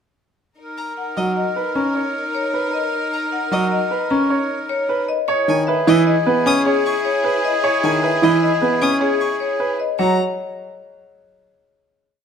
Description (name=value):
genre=classical, minimalist pattern music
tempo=153 BPM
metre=6/4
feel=straight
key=B major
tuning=A4 = 440 Hz
part: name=warm oboe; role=second line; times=0.6-9.8 s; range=G#4 to A#4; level=-25 LUFS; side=right 1 dB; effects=none
part: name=bright studio violin section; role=sustained chords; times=0.6-9.8 s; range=D#4 to A#4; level=-28 LUFS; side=left 2 dB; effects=none
part: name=clear violin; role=arpeggios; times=0.8-10.2 s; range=D#5 to D#6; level=-26 LUFS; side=left 3 dB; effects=none
part: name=marimba with hard mallets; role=melody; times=1.0-10.2 s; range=G#4 to A#5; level=-23 LUFS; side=left 6 dB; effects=none
part: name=bright concert grand piano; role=accompaniment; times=1.2-10.2 s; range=D#3 to C#4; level=-20 LUFS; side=left 1 dB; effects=none
part: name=clear baby grand piano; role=arpeggios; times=1.2-10.2 s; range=E4 to C#5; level=-22 LUFS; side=right 8 dB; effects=none
room=moderate recital hall reverb, RT60 1.5 s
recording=close, detailed microphones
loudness=-16 LUFS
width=side -7 dB against mid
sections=0.6-10.0 A section; 10.0-12.2 final chord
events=none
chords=0.6 Bmaj7; 5.3 E6; 10.0 F#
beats=| 0.58 0.97 1.36 1.76 2.15 2.54 | 2.93 3.33 3.72 4.11 4.50 4.89 | 5.29 5.68 6.07 6.46 6.85 7.25 | 7.64 8.03 8.42 8.81 9.21 9.60 | 9.99